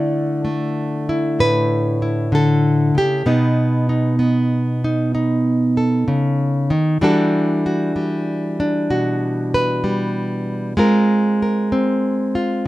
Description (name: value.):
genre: solo jazz.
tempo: 64 BPM.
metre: 4/4.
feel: swing 67% on 8ths.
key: D major.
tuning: A4 = 442 Hz.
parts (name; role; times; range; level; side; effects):
nylon-string guitar; solo; 0.0-12.7 s; A2 to D5; -16 LUFS; equal; none.
room: moderate studio reverb, RT60 0.5 s.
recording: none.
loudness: -16 LUFS.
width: side -16 dB against mid.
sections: 0.0-12.7 A section.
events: none.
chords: 0.0 Dsus2; 3.3 B7b13; 7.0 Em11; 10.8 G#69.